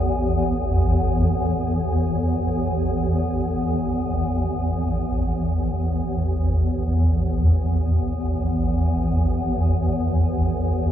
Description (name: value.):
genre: ambient.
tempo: free time.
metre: none.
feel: none.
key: unclear.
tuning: A4 = 440 Hz.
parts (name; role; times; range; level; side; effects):
swarming drone; solo; 0.0-10.9 s; A1 to E2; -19 LUFS; equal; built-in reverb, ping-pong delay.
room: wet cathedral reverb, RT60 5.9 s.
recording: none.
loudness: -20 LUFS.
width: side -10 dB against mid.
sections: 0.0-4.3 A section; 4.3-10.9 B section.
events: none.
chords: 0.0 A5.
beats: free time.